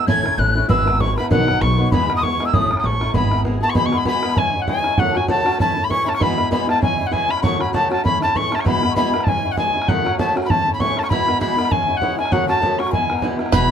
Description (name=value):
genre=celtic folk, Celtic reel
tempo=196 BPM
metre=4/4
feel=swing 56% on 8ths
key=E major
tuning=A4 = 440 Hz
part: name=wooden whistle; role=melody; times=0.0-13.7 s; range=F#5 to G#6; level=-20 LUFS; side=equal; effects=none
part: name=breathy concert flute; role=second line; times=0.0-13.7 s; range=F#5 to G#6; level=-25 LUFS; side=left 6 dB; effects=none
part: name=fingerpicked swing-style acoustic guitar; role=accompaniment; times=0.0-13.7 s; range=E2 to B4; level=-22 LUFS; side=equal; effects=none
part: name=upright bass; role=bass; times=0.1-3.6, 13.5-13.7 s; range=E1 to E2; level=-21 LUFS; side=equal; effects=none
part: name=bodhran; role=percussion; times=0.1-13.6 s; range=none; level=-22 LUFS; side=right 1 dB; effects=none
part: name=bluegrass banjo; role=second line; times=13.5-13.7 s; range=B4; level=-20 LUFS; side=right 7 dB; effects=none
room=little or no reverb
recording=close, detailed microphones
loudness=-16 LUFS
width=side -8 dB against mid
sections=0.0-3.8 A section; 3.8-13.5 B section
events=none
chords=0.1 A; 0.7 E/G#; 1.3 B; 1.9 E; 2.5 A; 3.1 E/G#; 3.8 E; 4.4 C#m; 5.0 F#m; 5.6 A; 6.2 E; 6.8 C#m; 7.4 F#m; 8.0 A; 8.7 E; 9.3 C#m; 9.9 F#m; 10.5 A; 11.1 E; 11.7 C#m; 12.3 F#m; 12.9 E